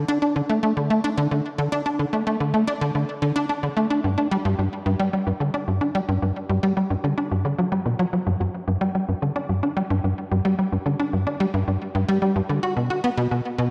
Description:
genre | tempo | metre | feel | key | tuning
ambient | 110 BPM | 4/4 | straight | unclear | A4 = 440 Hz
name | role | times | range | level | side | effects
tight sequencer bass | solo | 0.0-13.7 s | G2 to F#4 | -23 LUFS | equal | analog chorus, delay
room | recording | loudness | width
wet plate reverb, RT60 2.9 s | echo-heavy mix | -23 LUFS | mono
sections
0.0-8.3 A section; 8.3-13.7 B section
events
none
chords
none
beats
0.08 0.63 1.18 | 1.72 2.27 2.81 3.36 | 3.90 4.45 4.99 5.54 | 6.08 6.63 7.17 7.72 | 8.27 8.81 9.36 9.90 | 10.45 10.99 11.54 12.08 | 12.63 13.18

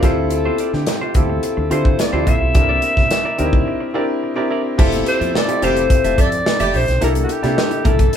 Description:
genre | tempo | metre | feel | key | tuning
polished 1980s jazz-funk pop | 107 BPM | 4/4 | straight | F major | A4 = 439 Hz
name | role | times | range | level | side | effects
breathy alto saxophone | melody | 0.0-8.1 s | Gb4 to E5 | -20 LUFS | left 2 dB | none
clear baby grand piano | accompaniment | 0.0-8.2 s | Bb3 to Bb4 | -21 LUFS | left 1 dB | none
semi-hollow electric guitar | riff | 0.0-8.2 s | Bb3 to F5 | -27 LUFS | right 3 dB | none
mellow fretless electric bass | bass | 0.0-8.1 s | F1 to D3 | -22 LUFS | equal | none
modern studio drum kit | drums | 0.0-8.2 s | crash cymbal, hi-hat, kick drum, snare drum | -18 LUFS | equal | none
congas | percussion | 0.0-8.2 s | none | -34 LUFS | left 1 dB | none
warm horn section | second line | 5.1-6.8 s | F3 to A4 | -25 LUFS | right 3 dB | none
room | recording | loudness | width
moderate small room reverb, RT60 0.5 s | band playing live in one room | -14 LUFS | side -8 dB against mid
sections
0.0-4.8 A section; 4.8-8.2 B section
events
break 3.7-4.8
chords
0.0 Dm11; 2.6 C9; 4.8 Fmaj9; 7.0 C13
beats
| 0.31 0.87 1.43 1.99 | 2.55 3.11 3.67 4.23 | 4.79 5.34 5.90 6.46 | 7.02 7.58 8.13

